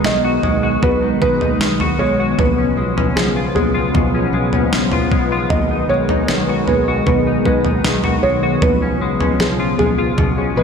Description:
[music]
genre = dream pop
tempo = 77 BPM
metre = 4/4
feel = straight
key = B lydian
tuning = A4 = 438 Hz
[part]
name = felt-muted upright piano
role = melody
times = 0.0-10.6 s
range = G#4 to D#5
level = -20 LUFS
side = right 1 dB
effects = analog chorus, ping-pong delay
[part]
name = warm analog pad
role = sustained chords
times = 0.0-10.6 s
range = C#3 to B3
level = -20 LUFS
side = left 1 dB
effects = chorus
[part]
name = semi-hollow electric guitar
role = arpeggios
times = 0.0-10.6 s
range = B2 to F#4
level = -21 LUFS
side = left 3 dB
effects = analog chorus, ping-pong delay
[part]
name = fretless electric bass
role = bass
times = 0.0-10.6 s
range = B1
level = -23 LUFS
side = equal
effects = none
[part]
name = clean 12-bit digital drum machine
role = drums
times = 0.0-10.4 s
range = kick drum, snare drum, toms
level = -20 LUFS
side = right 1 dB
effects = gated reverb
[sound]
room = moderate lush hall reverb, RT60 3.1 s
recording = bright 1980s-style digital production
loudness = -14 LUFS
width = side -6 dB against mid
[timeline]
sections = 0.0-10.6 A section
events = none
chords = 0.0 B6; 2.4 C#7/B; 5.5 B6; 8.6 C#7/B

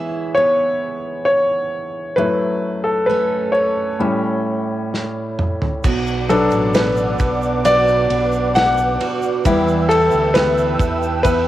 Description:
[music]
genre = pop ballad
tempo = 66 BPM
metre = 4/4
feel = straight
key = B minor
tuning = A4 = 440 Hz
[part]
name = clear concert grand piano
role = accompaniment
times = 0.0-11.5 s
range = A2 to F#5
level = -17 LUFS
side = left 1 dB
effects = cassette tape
[part]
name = picked steel-string acoustic guitar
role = arpeggios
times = 0.0-11.5 s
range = F#2 to A4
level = -24 LUFS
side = right 6 dB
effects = cassette tape
[part]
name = loose indie drum kit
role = drums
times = 4.9-11.5 s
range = crash cymbal, kick drum, ride cymbal, snare drum, toms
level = -23 LUFS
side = equal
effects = cassette tape
[part]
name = warm analog pad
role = sustained chords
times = 5.8-11.5 s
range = B4 to E6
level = -24 LUFS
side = right 2 dB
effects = chorus, cassette tape
[part]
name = fingered electric bass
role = bass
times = 5.8-11.5 s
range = A1 to E2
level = -24 LUFS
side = equal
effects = none
[part]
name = tube shaker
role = percussion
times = 5.8-11.5 s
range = none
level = -43 LUFS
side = right 9 dB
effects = none
[sound]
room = moderate spring reverb, RT60 2.7 s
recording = home recording on cassette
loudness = -15 LUFS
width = side -13 dB against mid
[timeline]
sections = 0.0-5.8 A section; 5.8-11.5 B section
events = grand piano solo 0.0-5.8, 5.8-11.5; drum fill 4.9-5.8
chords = 0.0 E; 2.2 F#m7; 4.0 A7; 5.8 Bm; 9.5 Em

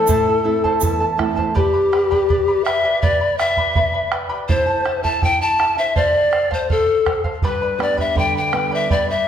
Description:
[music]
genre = andean folk, Andean ensemble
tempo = 82 BPM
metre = 2/4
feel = straight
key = unclear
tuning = A4 = 440 Hz
[part]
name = breathy bright pan flute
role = melody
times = 0.0-9.3 s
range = G4 to A5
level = -17 LUFS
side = left 2 dB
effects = none
[part]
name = charango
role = accompaniment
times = 0.0-9.3 s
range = E4 to B5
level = -24 LUFS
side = right 2 dB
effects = none
[part]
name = nylon-string guitar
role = accompaniment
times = 0.0-1.5, 7.4-9.3 s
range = E2 to E4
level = -24 LUFS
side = right 4 dB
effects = none
[part]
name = bombo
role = percussion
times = 0.1-9.1 s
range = none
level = -23 LUFS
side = right 2 dB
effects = none
[part]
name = tube shaker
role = percussion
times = 0.1-1.0 s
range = none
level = -28 LUFS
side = right 8 dB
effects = none
[sound]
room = wet recital hall reverb, RT60 1.3 s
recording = none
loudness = -15 LUFS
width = side -9 dB against mid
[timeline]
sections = 0.0-1.6 A section; 1.6-9.3 A section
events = none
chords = 0.0 Am; 1.6 G; 4.5 Am; 6.0 F; 7.4 G

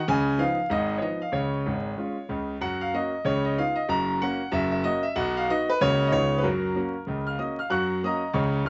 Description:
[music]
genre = jazz, stride piano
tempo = 189 BPM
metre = 4/4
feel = swing 60% on 8ths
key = F# major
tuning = A4 = 442 Hz
[part]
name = bright concert grand piano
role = solo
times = 0.0-8.7 s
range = F#1 to F#6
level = -26 LUFS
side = equal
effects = none
[sound]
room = moderate club reverb, RT60 0.5 s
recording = vinyl crackle, nothing above 7.7 kHz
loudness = -26 LUFS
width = mono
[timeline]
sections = 0.0-7.7 A section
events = none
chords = 0.1 C#9; 1.3 C#; 2.6 F#; 3.3 C#9; 3.9 F#; 5.2 B; 5.8 F#/C#; 6.1 C#9; 6.4 F#

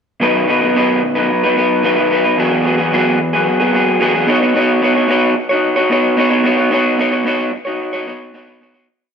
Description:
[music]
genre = rock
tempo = 111 BPM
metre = 4/4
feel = straight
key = unclear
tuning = A4 = 440 Hz
[part]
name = electric guitar through a small old amp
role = solo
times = 0.2-8.9 s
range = E2 to C#5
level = -12 LUFS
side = equal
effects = tape echo
[sound]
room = moderate studio reverb, RT60 0.7 s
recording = none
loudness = -12 LUFS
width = side -6 dB against mid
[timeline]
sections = 0.2-8.9 verse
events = fade-out 6.7-8.9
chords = 0.2 B; 2.4 Eadd9; 4.3 Badd9

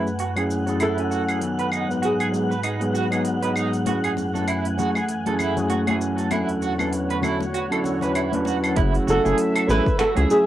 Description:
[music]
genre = sunset chillout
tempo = 98 BPM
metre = 4/4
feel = swing 58% on 16ths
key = F# minor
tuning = A4 = 440 Hz
[part]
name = flamenco guitar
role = melody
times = 0.0-3.5, 9.1-10.5 s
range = G#4 to B4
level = -23 LUFS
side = right 1 dB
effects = cassette tape
[part]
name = overdriven tine electric piano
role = accompaniment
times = 0.0-10.4 s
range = D#3 to G#5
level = -24 LUFS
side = equal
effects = auto-pan, cassette tape, tape echo
[part]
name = lush unison pad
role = sustained chords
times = 0.0-10.5 s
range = E2 to G#5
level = -29 LUFS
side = equal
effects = chorus, vintage 12-bit sampler grit, cassette tape
[part]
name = electric guitar at the edge of break-up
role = arpeggios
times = 0.0-10.3 s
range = D#4 to B4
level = -28 LUFS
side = right 6 dB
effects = tremolo, low-pass filter, cassette tape, tape echo, plate reverb
[part]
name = wind-like tuned noise texture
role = texture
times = 0.0-8.8 s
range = F#5 to F#6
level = -33 LUFS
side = left 2 dB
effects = built-in reverb, cassette tape, plate reverb
[part]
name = deep house drum kit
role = drums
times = 0.1-10.4 s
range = claves, finger snaps, hi-hat, shaker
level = -30 LUFS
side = equal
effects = none
[part]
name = congas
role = percussion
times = 3.9-8.6 s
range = none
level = -31 LUFS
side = left 8 dB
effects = none
[part]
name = round analog bass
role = bass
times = 8.8-10.3 s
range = F#1 to C#2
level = -22 LUFS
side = equal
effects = none
[part]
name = electronic kick drum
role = drums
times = 8.8-10.0 s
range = none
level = -24 LUFS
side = equal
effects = none
[sound]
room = wet booth ambience, RT60 0.2 s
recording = home recording on cassette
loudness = -20 LUFS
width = side -13 dB against mid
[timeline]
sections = 0.0-8.8 A section; 8.8-10.5 B section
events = filter sweep on analog synth pad 0.0-8.8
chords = 0.0 F#m9; 1.4 G#m7; 3.9 F#m9; 6.3 E13sus4; 8.8 F#m9

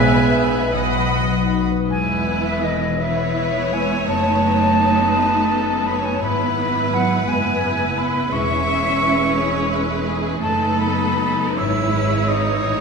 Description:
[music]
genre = classical, slow romantic movement for symphony orchestra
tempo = 56 BPM (dotted quarters)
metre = 6/8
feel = uneven beats, rubato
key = E major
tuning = A4 = 440 Hz
[part]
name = rich studio violin section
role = melody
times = 0.0-12.8 s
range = B4 to C#5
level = -31 LUFS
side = left 5 dB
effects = none
[part]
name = rich studio violin section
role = second line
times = 0.0-12.8 s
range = G#4 to B5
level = -26 LUFS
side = left 2 dB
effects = none
[part]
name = silver concert flute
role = second line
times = 0.0-12.8 s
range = B4 to E6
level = -22 LUFS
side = left 1 dB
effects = none
[part]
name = warm clarinet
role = second line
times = 0.0-0.7 s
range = B4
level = -28 LUFS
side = left 1 dB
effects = none
[part]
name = rich studio viola section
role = accompaniment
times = 0.0-12.8 s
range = G#3 to E5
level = -24 LUFS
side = right 2 dB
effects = none
[part]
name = dark French horn section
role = sustained chords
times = 0.0-0.7 s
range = G#3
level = -26 LUFS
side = right 3 dB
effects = none
[part]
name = concert harp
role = arpeggios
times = 0.0-12.8 s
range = E2 to E5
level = -25 LUFS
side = left 5 dB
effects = none
[part]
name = rich studio cello section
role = bass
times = 0.0-12.8 s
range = D#3 to E4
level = -24 LUFS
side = right 4 dB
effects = none
[part]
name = rich studio double bass section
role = bass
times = 0.0-12.8 s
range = E1 to B1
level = -26 LUFS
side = right 2 dB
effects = none
[part]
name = timpani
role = percussion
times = 0.0-0.7, 8.3-9.3 s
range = E2 to B2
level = -28 LUFS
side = right 1 dB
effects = none
[sound]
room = wet scoring stage reverb, RT60 2.1 s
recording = recorded in a church or concert hall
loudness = -16 LUFS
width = side -5 dB against mid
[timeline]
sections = 0.0-1.9 A section; 1.9-12.8 B section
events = none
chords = 0.0 E/B; 0.7 B; 1.9 E; 4.1 B7/F#; 6.2 E/G#; 8.3 E; 10.4 B7/F#; 11.6 E/G#

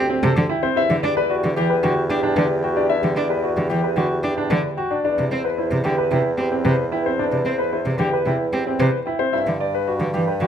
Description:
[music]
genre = classical, minimalist pattern music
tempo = 112 BPM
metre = 4/4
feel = straight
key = unclear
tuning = A4 = 442 Hz
[part]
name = warm concert grand piano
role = melody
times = 0.0-10.5 s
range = G4 to G5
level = -24 LUFS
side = left 10 dB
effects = none
[part]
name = rich cello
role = accompaniment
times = 0.0-10.5 s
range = C3 to D4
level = -22 LUFS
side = right 1 dB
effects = none
[part]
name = warm grand piano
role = arpeggios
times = 0.0-10.5 s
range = C4 to D5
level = -24 LUFS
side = right 5 dB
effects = none
[part]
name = warm bassoon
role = bass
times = 0.0-10.5 s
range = D2 to G2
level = -26 LUFS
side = right 1 dB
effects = none
[part]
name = clear French horn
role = second line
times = 0.1-10.5 s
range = G4 to B4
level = -29 LUFS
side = right 4 dB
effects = none
[sound]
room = light reverb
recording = close, detailed microphones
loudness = -18 LUFS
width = side -8 dB against mid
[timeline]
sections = 0.0-10.5 A section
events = none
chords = 0.0 D7sus4; 0.8 Em7; 5.0 Cmaj7/E; 9.3 Gmaj7

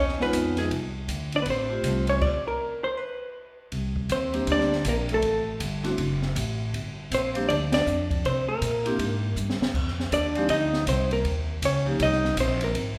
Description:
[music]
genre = jazz, small-group swing and bop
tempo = 160 BPM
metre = 4/4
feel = swing 63% on 8ths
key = C minor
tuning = A4 = 442 Hz
[part]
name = vintage hollow-body jazz guitar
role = melody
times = 0.0-12.8 s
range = Ab4 to Eb5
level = -29 LUFS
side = equal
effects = none
[part]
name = breathy alto saxophone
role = second line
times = 0.0-12.7 s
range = Ab3 to Eb4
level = -34 LUFS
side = equal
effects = none
[part]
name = upright bass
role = bass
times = 0.0-13.0 s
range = F#1 to C3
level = -31 LUFS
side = equal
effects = none
[part]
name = open jazz drum kit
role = drums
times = 0.1-12.9 s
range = crash cymbal, hi-hat, kick drum, ride cymbal, snare drum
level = -35 LUFS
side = equal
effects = none
[part]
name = vibraphone with medium hard mallets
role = accompaniment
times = 0.2-12.0 s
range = F3 to G4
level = -33 LUFS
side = equal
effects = none
[sound]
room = wet recital hall reverb, RT60 1.4 s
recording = recorded in a church or concert hall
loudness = -26 LUFS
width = mono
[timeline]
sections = 0.0-3.7 A section; 3.7-13.0 B section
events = stop 2.2-3.7; band accent 7.7; drum fill 9.4-9.7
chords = 0.0 Db9; 0.7 Csus2; 1.5 A7alt; 2.2 N.C.; 3.7 Cm9; 5.2 Am7; 6.0 F#m; 6.7 Gm7; 8.2 C7(no3); 9.7 F7(no3); 11.2 Eb7(no3)

